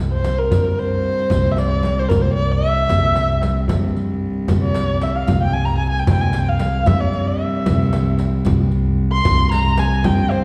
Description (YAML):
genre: Persian modal ensemble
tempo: 76 BPM (dotted quarters)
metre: 6/8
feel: straight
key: C dastgah homayun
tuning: A4 = 442 Hz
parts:
  - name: upright bass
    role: bass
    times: 0.0-10.4 s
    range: C2 to G2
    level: -23 LUFS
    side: equal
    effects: none
  - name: rich cello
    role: drone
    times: 0.0-10.4 s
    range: C2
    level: -26 LUFS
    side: equal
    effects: none
  - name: dark kamancheh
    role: melody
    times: 0.1-10.4 s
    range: Bb4 to C6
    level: -23 LUFS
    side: equal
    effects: none
  - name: frame drum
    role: percussion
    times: 0.2-10.2 s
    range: none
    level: -27 LUFS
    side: equal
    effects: none
  - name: riq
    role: percussion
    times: 0.2-10.4 s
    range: none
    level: -33 LUFS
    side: equal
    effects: none
  - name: tombak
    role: percussion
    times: 0.2-10.4 s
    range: none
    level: -26 LUFS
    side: equal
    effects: none
room: wet recital hall reverb, RT60 1.7 s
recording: heard from further back in the room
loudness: -18 LUFS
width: mono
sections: 0.0-10.4 A section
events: none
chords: none